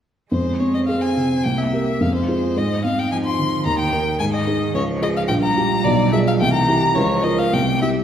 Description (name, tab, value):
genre	quick classical-period movement for piano trio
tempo	108 BPM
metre	2/4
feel	rubato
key	F minor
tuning	A4 = 436 Hz
part	clear violin	melody	0.3-7.9 s	C5 to C6	-22 LUFS	left 3 dB	none
part	clear cello	second line	0.3-8.0 s	Eb3 to C4	-25 LUFS	right 4 dB	none
part	dark baby grand piano	accompaniment	0.3-8.0 s	Bb1 to Bb4	-19 LUFS	equal	none
room	wet recital hall reverb, RT60 1.4 s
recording	heard from further back in the room, lossy compression artefacts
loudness	-17 LUFS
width	side -9 dB against mid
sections	0.3-8.0 A section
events	none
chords	0.3 Fm; 1.4 C7; 2.0 Fm; 2.5 Ab; 3.7 Eb; 4.2 Ab5; 4.7 Db; 5.3 Gm7/Bb; 5.8 Bdim7; 6.4 C; 7.0 Bbm/Db; 7.5 C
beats	| 0.31 0.88 | 1.44 2.00 | 2.55 3.10 | 3.65 4.20 | 4.74 5.29 | 5.85 6.41 | 6.96 7.53